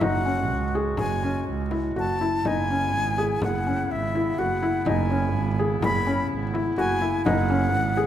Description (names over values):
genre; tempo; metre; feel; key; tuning
contemporary instrumental, chamber music in an uneven meter; 125 BPM; 5/4; straight; unclear; A4 = 440 Hz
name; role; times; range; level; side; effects
breathy bright concert flute; melody; 0.0-8.1 s; E5 to B5; -28 LUFS; left 1 dB; none
clear woodwind section; sustained chords; 0.0-8.1 s; A2 to F#4; -33 LUFS; equal; none
felt-muted upright piano; arpeggios; 0.0-8.1 s; C#4 to G#4; -26 LUFS; left 3 dB; none
rich double bass; bass; 0.0-8.1 s; F#1 to C#2; -27 LUFS; right 4 dB; none
frame drum; percussion; 0.0-8.1 s; none; -31 LUFS; left 2 dB; none
room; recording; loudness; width
moderate concert hall reverb, RT60 1.8 s; none; -22 LUFS; side -10 dB against mid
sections
0.0-8.1 A section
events
none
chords
0.0 F#madd9; 2.5 C#m7/F#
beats
| 0.01 0.50 0.99 1.48 1.97 | 2.46 2.94 3.42 3.91 4.38 | 4.86 5.34 5.82 6.30 6.78 | 7.25 7.73